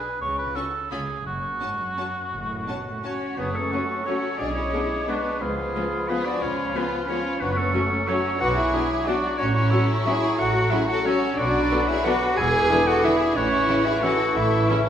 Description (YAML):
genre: classical, orchestral ballroom waltz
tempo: 159-195 BPM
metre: 3/4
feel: rubato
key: F# minor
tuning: A4 = 440 Hz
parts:
  - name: warm oboe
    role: second line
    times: 0.0-14.9 s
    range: C#4 to C#5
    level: -29 LUFS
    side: right 1 dB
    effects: none
  - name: rich chamber cello section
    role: bass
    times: 0.2-14.9 s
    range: F#2 to G#4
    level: -28 LUFS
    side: right 1 dB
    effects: none
  - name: rich symphonic double bass section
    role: bass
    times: 0.2-14.6 s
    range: E1 to C#2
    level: -29 LUFS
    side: right 1 dB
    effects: none
  - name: warm symphonic violin section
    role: melody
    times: 0.6-14.9 s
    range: B3 to C#6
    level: -30 LUFS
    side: left 3 dB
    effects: none
  - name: rich symphonic violin section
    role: second line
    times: 0.6-14.8 s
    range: A3 to F#4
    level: -35 LUFS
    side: left 2 dB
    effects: none
  - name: clear symphonic viola section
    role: accompaniment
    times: 0.6-14.8 s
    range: C#3 to C#4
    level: -32 LUFS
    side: equal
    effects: none
  - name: bright clarinet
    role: second line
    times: 3.0-14.9 s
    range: G#4 to G#5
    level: -27 LUFS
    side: left 1 dB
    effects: none
  - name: hollow concert flute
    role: second line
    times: 3.4-14.9 s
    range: B5 to D6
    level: -32 LUFS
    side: left 1 dB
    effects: none
  - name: warm bassoon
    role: accompaniment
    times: 3.4-14.9 s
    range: E3 to G#3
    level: -30 LUFS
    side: right 1 dB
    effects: none
  - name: mellow French horn section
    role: sustained chords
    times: 3.7-14.8 s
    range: B3 to G#4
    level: -32 LUFS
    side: left 3 dB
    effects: none
room: wet recital hall reverb, RT60 1.5 s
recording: recorded in a church or concert hall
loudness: -21 LUFS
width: side -9 dB against mid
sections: 0.0-3.4 A section; 3.4-14.9 A section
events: none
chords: 0.2 F#m/C# (rootless); 1.3 F#m; 4.4 G#dim/B; 5.4 C#7; 7.4 F#m; 8.4 Bm; 9.4 F#m/A; 11.4 Bm; 12.4 E7; 13.4 A